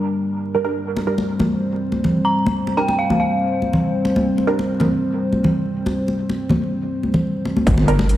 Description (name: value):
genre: deep dubstep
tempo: 141 BPM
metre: 4/4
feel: half-time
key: G minor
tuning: A4 = 441 Hz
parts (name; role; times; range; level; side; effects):
- dark analog pad; sustained chords; 0.0-8.2 s; G3 to C5; -22 LUFS; equal; chorus
- filtered dub chord stab; stabs; 0.5-4.5, 7.9 s; G3 to Bb4; -24 LUFS; right 4 dB; phaser, wide subtle chorus, dub echo
- congas; percussion; 1.0-8.1 s; none; -21 LUFS; equal; none
- dark detuned synth bell; melody; 2.2-3.5 s; F5 to Bb5; -22 LUFS; equal; chorus, dub echo
- deep soft wobble bass; bass; 7.7-8.2 s; G1; -17 LUFS; equal; chorus
- electronic hi-hat; drums; 7.7-8.2 s; none; -36 LUFS; equal; none
- electronic kick drum; drums; 7.7-7.8 s; none; -18 LUFS; equal; distortion
- impact; sound effects; 7.7-8.2 s; none; -22 LUFS; equal; none
room: moderate echo chamber reverb, RT60 2.2 s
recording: vinyl crackle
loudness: -17 LUFS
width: side -13 dB against mid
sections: 0.0-7.7 A section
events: impact 7.7-8.2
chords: 0.0 Gm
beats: 0.01 0.43 | 0.86 1.28 1.71 2.13 | 2.56 2.99 3.41 3.84 | 4.26 4.69 5.11 5.54 | 5.96 6.39 6.82 7.24 | 7.67 8.09